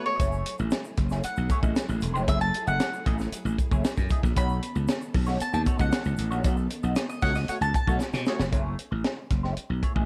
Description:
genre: funk.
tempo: 115 BPM.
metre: 4/4.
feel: straight.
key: F# dorian.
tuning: A4 = 440 Hz.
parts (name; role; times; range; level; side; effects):
mandolin; melody; 0.0-8.0 s; C#5 to B5; -33 LUFS; equal; none.
warm horn section; second line; 0.0-0.2, 7.2-8.4 s; A3 to C#5; -39 LUFS; equal; none.
warm studio string section; sustained chords; 0.0-8.5 s; D#3 to A4; -42 LUFS; equal; none.
semi-hollow electric guitar; accompaniment; 0.2-10.1 s; A3 to D#5; -37 LUFS; equal; wah, subtle chorus.
slap bass; bass; 0.2-10.1 s; E1 to B2; -30 LUFS; equal; none.
tight funk drum kit; drums; 0.2-10.1 s; hi-hat, kick drum, snare drum; -29 LUFS; equal; none.
tube shaker; percussion; 0.2-8.5 s; none; -53 LUFS; equal; none.
room: little or no reverb.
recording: dark, warm production.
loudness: -27 LUFS.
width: mono.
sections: 0.0-8.5 A section; 8.5-10.1 B section.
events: break 0.0; band accent 0.0, 6.4-8.5; mandolin solo 0.0-8.5; drum fill 8.0-8.5.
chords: 0.2 F#m9; 4.4 B9; 8.5 F#m9.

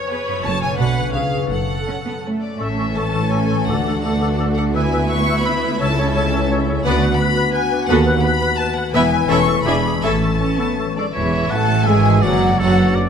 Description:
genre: classical, dramatic, fast romantic movement for symphony orchestra.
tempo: 158-179 BPM.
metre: 3/4.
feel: rubato.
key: A major.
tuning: A4 = 440 Hz.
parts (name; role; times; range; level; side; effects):
rich chamber violin section; melody; 0.0-13.0 s; Cb5 to C#6; -24 LUFS; left 4 dB; none.
clear symphonic violin section; second line; 0.0-13.0 s; Cb4 to E5; -26 LUFS; left 1 dB; none.
clear symphonic viola section; accompaniment; 0.0-12.9 s; E3 to C#5; -26 LUFS; right 2 dB; none.
concert harp; arpeggios; 0.0-13.1 s; F2 to Cb5; -24 LUFS; left 9 dB; none.
rich symphonic double bass section; bass; 0.4-12.9 s; E1 to D#2; -22 LUFS; right 4 dB; none.
rich symphonic cello section; bass; 0.5-13.0 s; C#2 to C#4; -22 LUFS; right 3 dB; none.
clear clarinet; second line; 2.6-11.1 s; G#4 to C#5; -28 LUFS; equal; none.
mellow hollow flute section; second line; 2.6-13.0 s; D5 to F#6; -28 LUFS; left 3 dB; none.
mellow French horn section; sustained chords; 2.6-13.0 s; E3 to F#4; -25 LUFS; left 3 dB; none.
clear oboe; second line; 11.1-13.1 s; A4 to F#5; -24 LUFS; right 2 dB; none.
room: moderate concert hall reverb, RT60 2.1 s.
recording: none.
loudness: -15 LUFS.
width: side -7 dB against mid.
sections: 0.0-2.6 A section; 2.6-11.2 B section; 11.2-13.1 B section.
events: none.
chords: 0.5 F#m; 0.8 Bm7; 1.1 C#7; 1.5 F#m; 2.6 A; 3.7 D; 4.8 E7/D; 5.8 A/C#; 6.9 Bm/D; 7.9 B7/D#; 8.9 E; 9.3 A/E; 9.7 E7; 10.0 A; 11.2 A/E; 12.2 D/F#.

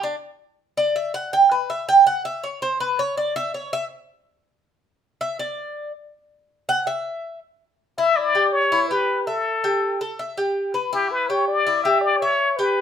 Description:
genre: latin.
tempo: 162 BPM.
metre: 4/4.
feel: straight.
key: unclear.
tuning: A4 = 444 Hz.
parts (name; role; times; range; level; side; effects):
Cuban tres; arpeggios; 0.0-12.8 s; D4 to G5; -21 LUFS; right 2 dB; none.
trumpet with plunger mute; melody; 8.0-12.8 s; G4 to E5; -19 LUFS; left 4 dB; none.
room: moderate studio reverb, RT60 0.8 s.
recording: minimal, uncompressed stereo recording.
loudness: -19 LUFS.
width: side -8 dB against mid.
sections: 0.0-8.0 A section; 8.0-12.8 B section.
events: Cuban tres solo 0.0-8.0.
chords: 0.0 N.C.; 8.0 Em7; 9.5 A5; 10.9 Em7.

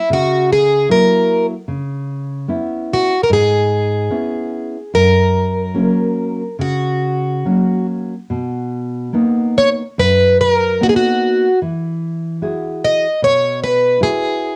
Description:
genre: fado-style ballad.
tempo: 74 BPM.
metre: 4/4.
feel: rubato.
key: B major.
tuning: A4 = 440 Hz.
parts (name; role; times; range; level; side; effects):
picked plugged-in twelve-string acoustic guitar; melody; 0.0-14.6 s; F#4 to D#5; -16 LUFS; equal; cassette tape.
nylon-string guitar; accompaniment; 0.1-14.6 s; F#2 to G#4; -21 LUFS; equal; cassette tape.
room: moderate studio reverb, RT60 0.6 s.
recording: home recording on cassette.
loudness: -16 LUFS.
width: mono.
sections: 0.0-14.6 A section.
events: none.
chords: 0.0 F#7; 1.7 C#m7; 4.9 F#; 8.3 Bmaj7; 11.6 Eadd9.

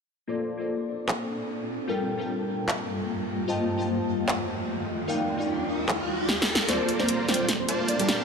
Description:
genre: future bass.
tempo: 150 BPM.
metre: 4/4.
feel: swing 55% on 16ths, half-time.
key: Bb major.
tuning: A4 = 439 Hz.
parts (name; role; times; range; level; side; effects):
glassy digital keys; accompaniment; 0.3-8.1 s; G3 to A5; -31 LUFS; left 2 dB; chorus, low-pass filter, digital delay.
shimmering ambient pad; sustained chords; 1.0-8.2 s; Eb2 to A4; -31 LUFS; equal; chorus, built-in reverb.
big-room dance drum kit; drums; 1.1-8.2 s; handclaps, hi-hat, snare drum; -29 LUFS; equal; studio reverb.
riser; sound effects; 4.2-8.2 s; none; -32 LUFS; equal; none.
soft octave-layered synth lead; melody; 6.7-8.2 s; C5 to D5; -30 LUFS; equal; chorus, vintage 12-bit sampler grit, ping-pong delay.
supersaw chords; riff; 6.7-8.2 s; G3 to Bb5; -27 LUFS; right 2 dB; low-pass filter.
room: light reverb.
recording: lossy compression artefacts.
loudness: -25 LUFS.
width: side -5 dB against mid.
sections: 0.3-6.7 A section; 6.7-8.2 B section.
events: filter sweep on synth keys 0.3-6.7; filter sweep on ambient pad 0.3-6.7; riser 4.2-6.7, 6.7-8.2; drum fill 6.3-6.7, 6.7-8.2; build-up 6.7-8.2.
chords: 0.3 Bbmaj9; 1.7 Gm7; 3.5 F7; 4.9 Ebmaj9; 6.7 Bbmaj9.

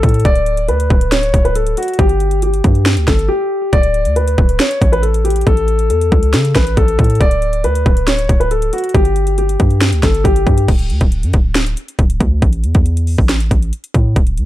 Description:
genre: hip hop, trap.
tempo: 138 BPM.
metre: 4/4.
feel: half-time.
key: D major.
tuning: A4 = 440 Hz.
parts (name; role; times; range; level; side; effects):
dark grand piano; melody; 0.0-10.7 s; F#4 to D5; -17 LUFS; left 2 dB; low-pass filter, ping-pong delay.
warm 808-style bass; bass; 0.0-14.5 s; D1 to C#3; -15 LUFS; equal; none.
trap drum kit; drums; 0.0-14.5 s; crash cymbal, hi-hat, kick drum, snare drum; -14 LUFS; equal; none.
room: little or no reverb.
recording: dark, warm production.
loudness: -11 LUFS.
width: side -14 dB against mid.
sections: 0.0-10.7 A section; 10.7-14.5 B section.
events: break 3.3-3.7.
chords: 0.2 D5; 2.0 G5; 3.7 D5; 5.5 A5; 7.2 D5; 8.9 G5; 10.7 N.C.; 12.4 A5.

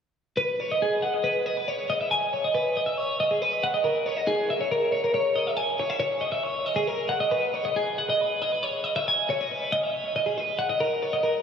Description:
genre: rock.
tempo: 138 BPM.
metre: 4/4.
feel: straight.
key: unclear.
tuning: A4 = 442 Hz.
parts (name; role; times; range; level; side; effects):
twelve-string electric guitar; solo; 0.4-11.4 s; G#4 to G#5; -23 LUFS; equal; wide subtle chorus, diffuse ambient delay.
room: wet cathedral reverb, RT60 5.0 s.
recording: dreamy mix soaked in reverb.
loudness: -23 LUFS.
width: side -7 dB against mid.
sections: 0.4-11.4 A section.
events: none.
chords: none.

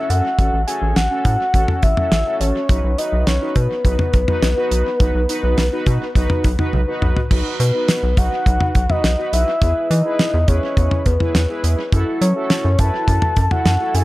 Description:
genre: synth-pop.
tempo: 104 BPM.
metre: 4/4.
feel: straight.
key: unclear.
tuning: A4 = 439 Hz.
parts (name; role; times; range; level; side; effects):
soft octave-layered synth lead; melody; 0.0-14.0 s; B4 to A5; -21 LUFS; left 1 dB; chorus, dub echo.
analog synth brass; accompaniment; 0.0-14.0 s; C#4 to B4; -25 LUFS; right 1 dB; chorus.
rubbery square bass; bass; 0.1-14.0 s; A1 to F#3; -18 LUFS; equal; none.
damped 70s drum kit; drums; 0.1-14.0 s; crash cymbal, hi-hat, kick drum, snare drum, toms; -18 LUFS; equal; none.
room: light reverb, small room ambience.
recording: echo-heavy mix.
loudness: -15 LUFS.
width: side -18 dB against mid.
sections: 0.0-7.3 A section; 7.3-14.0 B section.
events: drum fill 6.7-7.3.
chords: 0.4 A6; 2.7 B; 9.6 E; 11.9 F#m7.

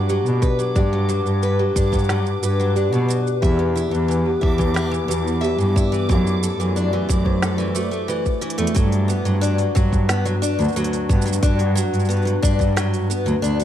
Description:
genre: folktronica.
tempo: 90 BPM.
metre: 4/4.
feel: straight.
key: G major.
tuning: A4 = 440 Hz.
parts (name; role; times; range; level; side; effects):
warbly tape-like pad; sustained chords; 0.0-13.6 s; A3 to F#5; -28 LUFS; left 2 dB; chorus, built-in reverb.
picked old ladder-braced acoustic guitar; arpeggios; 0.0-13.6 s; E3 to E5; -26 LUFS; left 2 dB; ping-pong delay.
dark cello; bass; 0.0-13.6 s; D2 to B2; -20 LUFS; equal; none.
backwards swelling texture; texture; 0.0-8.8 s; D6; -34 LUFS; right 1 dB; built-in reverb.
buzzing kalimba; second line; 0.1-8.6 s; D4 to D5; -25 LUFS; left 1 dB; ping-pong delay.
organic electronic drum kit; drums; 0.1-13.6 s; hi-hat, shaker, snare drum; -29 LUFS; right 3 dB; none.
electronic kick drum; drums; 0.4-12.7 s; none; -19 LUFS; equal; none.
room: light reverb, small room reverb.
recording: dark, warm production.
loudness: -17 LUFS.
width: side -11 dB against mid.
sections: 0.0-8.8 A section; 8.8-13.6 B section.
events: drum fill 8.4-8.8.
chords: 0.0 Gmaj7; 3.4 E5; 6.1 Dadd9/F#; 8.8 Gmaj7.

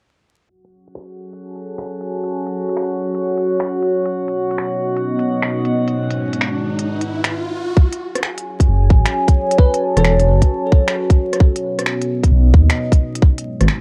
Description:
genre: future garage.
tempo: 132 BPM.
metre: 4/4.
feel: swing 67% on 16ths.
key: F# dorian.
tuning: A4 = 440 Hz.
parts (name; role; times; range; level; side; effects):
dark analog pad; sustained chords; 0.5-13.8 s; G#3 to A5; -22 LUFS; equal; chorus, phaser, sidechain pumping.
drifting glass-harmonics texture; texture; 1.0-7.3 s; F#4 to F#5; -33 LUFS; equal; chorus, built-in reverb.
organic electronic drum kit; drums; 0.6-13.8 s; finger snaps, hi-hat, rim click; -25 LUFS; equal; overdrive, low-pass filter on hats, vintage 12-bit sampler grit, low-pass filter on snare, low-pass filter on room.
riser; sound effects; 5.6-7.8 s; none; -30 LUFS; equal; none.
electronic kick drum; drums; 7.8-13.3 s; none; -14 LUFS; equal; overdrive, vintage 12-bit sampler grit.
dark detuned saw bass; bass; 8.7-13.7 s; E1 to D#2; -15 LUFS; equal; sidechain pumping.
bell-like FM electric piano; melody; 9.6-10.1 s; A4 to B4; -28 LUFS; equal; chorus, tape echo.
room: digital ambience.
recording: dry, gritty hardware recording, vinyl crackle, low-pass filter.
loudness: -17 LUFS.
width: mono.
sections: 0.5-7.8 A section; 7.8-13.8 B section.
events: filter sweep on drum 0.5-7.8; filter sweep 0.5-7.8; riser 5.6-7.8.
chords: 0.5 F#m; 4.1 B7; 6.0 G#m7; 7.8 F#m; 11.4 B7; 13.2 G#m7.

